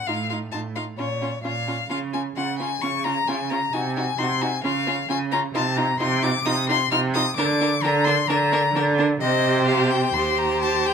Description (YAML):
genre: quick classical-period movement for string quartet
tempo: 131 BPM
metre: 4/4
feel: straight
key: Bb major from 5.5 s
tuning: A4 = 440 Hz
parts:
  - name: rich violin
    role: melody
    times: 0.0-10.9 s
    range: Db5 to F6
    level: -24 LUFS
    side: left 6 dB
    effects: none
  - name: rich violin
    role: second line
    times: 0.1-10.9 s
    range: F4 to C5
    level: -30 LUFS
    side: left 3 dB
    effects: none
  - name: rich viola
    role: accompaniment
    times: 0.1-10.9 s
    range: Db4 to G4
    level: -28 LUFS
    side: right 4 dB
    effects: none
  - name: rich cello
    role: bass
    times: 0.1-10.9 s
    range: Eb2 to D3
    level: -24 LUFS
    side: right 3 dB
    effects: none
room: light reverb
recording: none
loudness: -20 LUFS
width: side -6 dB against mid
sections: 0.0-10.9 A section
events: none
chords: 0.1 F7/A; 1.0 Bbm; 1.9 Db; 3.7 Ab7/C; 4.6 Db; 5.5 F5/C; 7.4 Bb/D; 9.2 Cm; 10.2 Cm/Eb